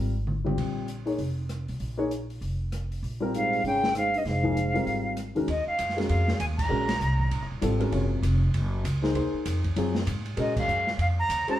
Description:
modal jazz; 196 BPM; 4/4; swing 61% on 8ths; Eb dorian from 5.5 s; A4 = 440 Hz
dark baby grand piano; accompaniment; 0.0-11.6 s; C3 to Db5; -29 LUFS; left 2 dB
upright bass; bass; 0.0-11.5 s; Eb1 to Bb2; -28 LUFS; equal
open jazz drum kit; drums; 0.3-11.5 s; crash cymbal, hi-hat, kick drum, ride cymbal, rim click, snare drum, toms; -35 LUFS; equal
breathy trombone; second line; 3.3-5.1 s; G2 to Db3; -31 LUFS; right 2 dB
silver concert flute; melody; 3.4-7.5, 10.4-11.6 s; Eb5 to Bb5; -27 LUFS; equal
wet studio reverb, RT60 0.8 s; heard from further back in the room; -24 LUFS; side -13 dB against mid
0.0-5.5 A section; 5.5-11.6 B section
drum fill 0.3-0.6; band accent 6.5, 10.5
0.0 Db (rootless); 0.6 Bb5; 3.0 Db (rootless); 5.5 Ebm9

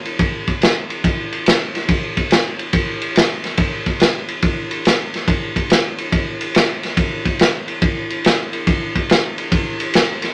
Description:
blues; 142 BPM; 4/4; swing 67% on 8ths
crunchy breakbeat drum kit; drums; 0.1-10.3 s; kick drum, ride cymbal, snare drum; -18 LUFS; equal
moderate studio reverb, RT60 0.6 s; -18 LUFS; mono
0.0-10.3 A section

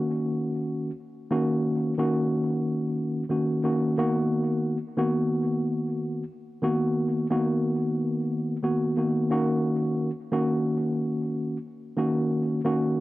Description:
hip hop; 90 BPM; 4/4; swing 60% on 16ths; Eb minor; A4 = 440 Hz
mellow tine electric piano; solo; 0.0-13.0 s; Eb3 to Gb4; -24 LUFS; equal; medium stereo tremolo, cassette tape, high-pass filter, low-pass filter
light reverb; dry, gritty hardware recording; -24 LUFS; side -17 dB against mid
0.0-9.3 A section; 9.3-13.0 B section
0.0 Ebm7; 4.0 Bmaj7/D#; 9.3 Ebm7

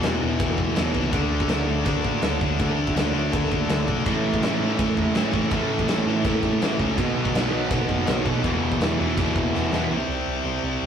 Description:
punk rock; 164 BPM; 4/4; straight; A4 = 437 Hz
thick fuzz guitar; riff; 0.0-9.9 s; E2 to D4; -26 LUFS; right 2 dB; distortion
tight distorted guitar; riff; 0.0-10.9 s; E2 to D4; -26 LUFS; left 5 dB; distortion
hollow-body short-scale picked electric bass; bass; 0.0-10.9 s; E1 to A2; -29 LUFS; equal
big rock drum kit; drums; 0.0-9.8 s; crash cymbal, kick drum, snare drum; -26 LUFS; equal
overdriven semi-hollow guitar; riff; 4.1-10.9 s; A2 to E4; -28 LUFS; right 7 dB
moderate studio reverb, RT60 0.5 s; rough rehearsal-room recording; -20 LUFS; side -8 dB against mid
0.0-9.9 A section
drum fill 9.5-9.9
0.0 E5; 1.1 D5; 4.1 A; 7.0 B; 8.4 Em; 9.9 C

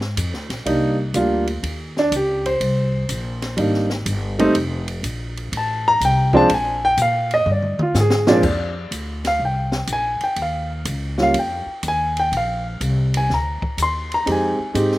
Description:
jazz piano trio; 124 BPM; 4/4; swing 68% on 8ths; Bb mixolydian; A4 = 440 Hz
upright bass; bass; 0.0-15.0 s; F1 to Bb2; -23 LUFS; equal
open jazz drum kit; drums; 0.0-15.0 s; crash cymbal, hi-hat, kick drum, ride cymbal, snare drum, toms; -28 LUFS; equal
warm concert grand piano; melody; 0.7-15.0 s; Bb2 to C6; -18 LUFS; equal; slapback echo
little or no reverb; recorded outdoors, with no room sound; -18 LUFS; side -17 dB against mid
0.0-8.4 A section; 8.4-15.0 A section
grand piano solo 0.0-15.0; drum fill 7.5-8.4
0.0 Bb7; 0.7 Cm7; 4.5 F; 6.5 Bb7; 8.4 Bbadd9; 10.4 Eb9; 12.3 Bbadd9; 14.3 Fm7

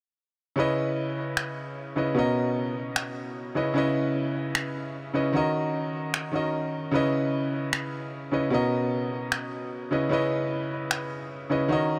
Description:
future bass; 151 BPM; 4/4; swing 56% on 16ths, half-time; C# dorian; A4 = 438 Hz
bright grand piano; accompaniment; 0.6-12.0 s; B2 to D#5; -28 LUFS; equal; tape echo
electronic finger snaps; drums; 1.4-11.0 s; -30 LUFS; equal; overdrive
light reverb, small room ambience; dark, warm production; -28 LUFS; mono
0.6-12.0 A section
0.6 C#m7; 2.2 Bmaj9; 3.6 C#m7; 5.3 D#m7; 6.9 C#m7; 8.5 Bmaj9; 9.9 C#m7

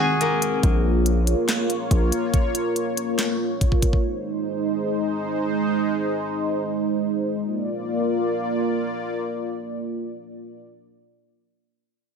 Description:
hip hop, trap; 141 BPM; 4/4; half-time; Bb minor; A4 = 439 Hz
steel-string zither; melody; 0.0-3.4 s; Bb3 to Ab5; -26 LUFS; left 2 dB; low-pass filter, diffuse ambient delay
silver concert flute; second line; 0.0-0.6 s; Ab5; -29 LUFS; left 4 dB; diffuse ambient delay
sweeping resonant pad; sustained chords; 0.0-10.6 s; Eb3 to D5; -23 LUFS; right 1 dB; chorus
trap drum kit; drums; 0.2-4.0 s; handclaps, hi-hat, kick drum, snare drum; -22 LUFS; equal
distorted 808-style bass; bass; 0.6-2.1 s; Bb1; -20 LUFS; equal; distortion
wet plate reverb, RT60 1.7 s, digital ambience; dreamy mix soaked in reverb; -21 LUFS; side -6 dB against mid
0.6-7.4 A section; 7.4-10.8 B section
break 0.0-0.6
0.0 Ab; 0.6 Bbm; 4.0 Ab; 7.4 Bb

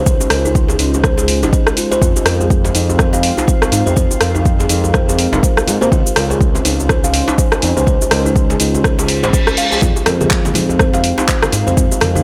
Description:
afro house; 123 BPM; 4/4; swing 58% on 16ths; F minor; A4 = 439 Hz
dark analog pad; sustained chords; 0.0-12.2 s; Ab3 to F5; -24 LUFS; equal; chorus, phaser, sidechain pumping
buzzing kalimba; arpeggios; 0.0-12.2 s; C4 to F5; -22 LUFS; equal; sidechain pumping, digital delay
smooth gliding synth bass; bass; 0.0-12.2 s; F1 to Bb2; -20 LUFS; equal; sidechain pumping
deep house drum kit; drums; 0.1-12.2 s; cabasa, handclaps, hi-hat, rim click; -20 LUFS; equal; overdrive
electronic kick drum; drums; 0.1-11.9 s; -17 LUFS; equal; overdrive
djembe; percussion; 0.2-12.2 s; -27 LUFS; equal
reverse cymbal; sound effects; 9.1-9.8 s; -23 LUFS; equal
congas; percussion; 9.8-12.2 s; -26 LUFS; equal
light reverb; -14 LUFS; mono
0.0-12.2 A section
reverse cymbal 9.1-9.8
0.0 Dbmaj7; 2.0 Fm; 5.9 Dbmaj7; 9.8 Fm

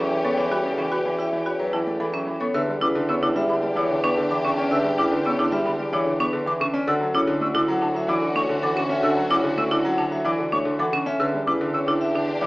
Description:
classical, minimalist pattern music; 111 BPM; 4/4; straight; E dorian; A4 = 444 Hz
vibraphone with medium hard mallets; melody; 0.0-12.5 s; A4 to F#5; -28 LUFS; left 1 dB
clear grand piano; accompaniment; 0.0-12.5 s; C#3 to C#4; -27 LUFS; equal
bright studio string section; sustained chords; 0.0-12.5 s; C#4 to G4; -32 LUFS; left 1 dB
marimba with hard mallets; arpeggios; 0.0-12.5 s; C#4 to B4; -26 LUFS; right 1 dB
dark bassoon; bass; 0.0-12.5 s; D2 to E2; -28 LUFS; equal
hollow concert flute; arpeggios; 0.2-12.5 s; A5 to E6; -27 LUFS; left 1 dB
moderate recital hall reverb, RT60 1.3 s; small speaker sound; -20 LUFS; side -21 dB against mid
0.0-2.5 A section; 2.5-12.5 B section
0.0 Em69; 2.5 Em7; 6.9 Dmaj7; 11.2 Em7

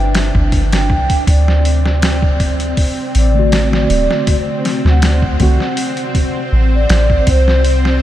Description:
trip hop; 80 BPM; 4/4; swing 54% on 16ths; A4 = 440 Hz
pure breathy sine lead; melody; 0.0-8.0 s; C5 to G5; -20 LUFS; equal; lush chorus, tape echo
string machine, cellos; sustained chords; 0.0-8.0 s; C4 to D4; -22 LUFS; left 1 dB; ensemble chorus
soft 808-style bass; bass; 0.0-8.0 s; D1 to D2; -13 LUFS; equal
trip hop sampler-style drum kit; drums; 0.1-8.0 s; hi-hat, kick drum, snare drum; -17 LUFS; equal
bowed-like drone; texture; 3.0-8.0 s; C5; -30 LUFS; right 4 dB; built-in reverb
mellow tine electric piano; accompaniment; 3.3-5.6 s; D3 to F#4; -22 LUFS; equal; medium stereo tremolo, harmonic tremolo, tape echo
light reverb; -11 LUFS; side -13 dB against mid
0.0-8.0 A section
0.0 C5; 1.3 D7; 7.3 N.C.

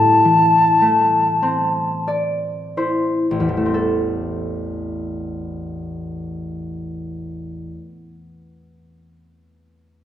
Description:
celtic folk, Celtic slow air; 26-36 BPM (dotted quarters); 6/8; rubato; A minor; A4 = 440 Hz
baroque flute; melody; 0.0-2.1 s; A5; -14 LUFS; left 2 dB
concert harp; accompaniment; 0.0-8.1 s; A1 to D5; -22 LUFS; equal
moderate recital hall reverb, RT60 1.4 s; dark, warm production; -16 LUFS; side -11 dB against mid
0.0-3.5 A section; 3.5-8.0 B section
slowing down 0.0-3.5; harp fill 1.4-3.5
0.0 Am

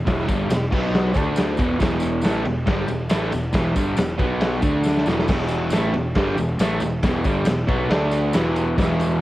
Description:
garage rock duo or trio; 138 BPM; 4/4; straight; E minor; A4 = 440 Hz
fuzz picked electric bass; bass; 0.0-9.2 s; E1 to D2; -27 LUFS; equal; overdrive
crunchy overdriven guitar; riff; 0.1-9.2 s; E2 to D4; -22 LUFS; equal; cassette tape
raw garage drum kit; drums; 0.1-9.1 s; crash cymbal, kick drum, ride cymbal, snare drum; -23 LUFS; equal; cassette tape
tambourine; percussion; 0.1-9.1 s; -42 LUFS; left 3 dB
moderate studio reverb, RT60 0.6 s; home recording on cassette; -18 LUFS; side -16 dB against mid
0.0-9.2 A section
drum fill 4.8-5.3
0.0 Em; 0.7 B5; 1.1 D5; 1.6 Em; 4.2 B5; 4.6 D5; 5.1 Em; 7.9 D5; 8.3 E5

